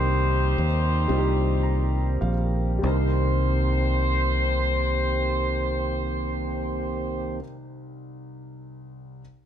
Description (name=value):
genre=gospel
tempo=31-42 BPM (dotted quarters)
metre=6/8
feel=straight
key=C minor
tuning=A4 = 440 Hz
part: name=mellow horn section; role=melody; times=0.0-7.4 s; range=Eb4 to C5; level=-28 LUFS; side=left 1 dB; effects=none
part: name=warm concert grand piano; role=accompaniment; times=0.0-9.2 s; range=C2 to Bb5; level=-32 LUFS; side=left 2 dB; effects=none
part: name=mellow tonewheel organ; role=sustained chords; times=0.0-7.4 s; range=Eb3 to G4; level=-31 LUFS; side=right 4 dB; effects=slow rotary speaker, chorus vibrato
part: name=fingered electric bass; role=bass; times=0.0-7.4 s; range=Bb1 to Eb2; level=-24 LUFS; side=equal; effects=none
room=light reverb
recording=none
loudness=-22 LUFS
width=side -9 dB against mid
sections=0.0-2.8 A section; 2.8-6.7 B section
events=slowing down 0.0-2.8; grand piano fill 1.1-2.8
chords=0.0 Cm7